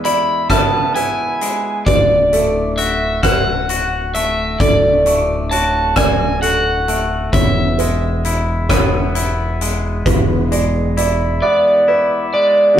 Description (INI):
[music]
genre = post-rock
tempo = 44 BPM (dotted quarters)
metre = 6/8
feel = straight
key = unclear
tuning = A4 = 440 Hz
[part]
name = crunchy overdriven guitar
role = melody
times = 0.0-12.8 s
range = D5 to B5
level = -16 LUFS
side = equal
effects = none
[part]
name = felt-muted upright piano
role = arpeggios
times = 0.0-12.8 s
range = A4 to C#6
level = -24 LUFS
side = right 4 dB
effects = none
[part]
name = twangy electric guitar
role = arpeggios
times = 0.0-12.8 s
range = D2 to F#4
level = -22 LUFS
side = left 2 dB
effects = none
[part]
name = huge arena drum kit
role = drums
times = 0.0-11.2 s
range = hi-hat, kick drum, rim click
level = -19 LUFS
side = equal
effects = none
[part]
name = growling fingered electric bass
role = bass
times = 1.9-11.4 s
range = D1 to E1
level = -21 LUFS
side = equal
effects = overdrive
[sound]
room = wet stone room reverb, RT60 1.3 s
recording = band playing live in one room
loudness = -13 LUFS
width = side -10 dB against mid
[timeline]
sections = 0.0-12.8 A section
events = none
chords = 0.0 E; 1.9 Dmaj7; 7.3 E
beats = 0.50 | 1.87 3.23 | 4.60 5.97 | 7.33 8.70 | 10.06 11.43 | 12.79